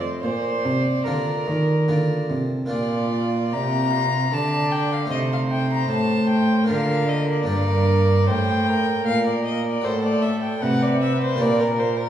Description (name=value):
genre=classical, baroque-style sonata movement with continuo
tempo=75 BPM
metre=3/4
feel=uneven beats, rubato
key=Bb major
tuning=A4 = 440 Hz
part: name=warm violin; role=melody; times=0.0-12.1 s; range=Bb4 to Bb5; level=-25 LUFS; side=left 1 dB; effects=none
part: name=rich violin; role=second line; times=0.0-12.1 s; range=F4 to D5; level=-28 LUFS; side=right 3 dB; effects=none
part: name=harpsichord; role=accompaniment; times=0.0-12.1 s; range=G2 to G4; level=-26 LUFS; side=equal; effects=none
part: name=rich cello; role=bass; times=0.0-12.1 s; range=G2 to F3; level=-22 LUFS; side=right 1 dB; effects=none
room=wet recital hall reverb, RT60 1.8 s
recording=heard from further back in the room, small room ambience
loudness=-19 LUFS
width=side -10 dB against mid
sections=0.0-2.7 A section; 2.7-12.1 B section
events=none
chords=0.2 Bb; 5.1 Adim/C; 6.7 Bb/D; 7.5 Gm; 9.8 F#dim/A; 11.4 Gm/Bb